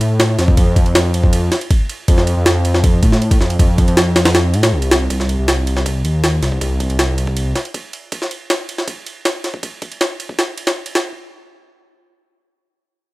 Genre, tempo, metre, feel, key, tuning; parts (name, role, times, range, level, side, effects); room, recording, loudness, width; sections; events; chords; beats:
drum and bass, jungle; 159 BPM; 4/4; straight; C dorian; A4 = 440 Hz
dark detuned saw bass; bass; 0.0-7.5 s; C2 to A2; -16 LUFS; equal
jungle sampler-style drum kit; drums; 0.0-11.0 s; kick drum, ride cymbal, snare drum; -16 LUFS; equal; overdrive, high-pass filter on kick, high-pass filter on cymbals, high-pass filter on snare
little or no reverb; -14 LUFS; side -20 dB against mid
0.0-5.1 A section; 5.1-11.1 B section
drop 0.0-5.1
0.20 | 0.57 0.95 1.33 1.71 | 2.08 2.46 2.84 3.21 | 3.59 3.97 4.35 4.72 | 5.10 5.48 5.86 6.23 | 6.61 6.99 7.37 7.74 | 8.12 8.50 8.87 9.25 | 9.63 10.01 10.38 10.76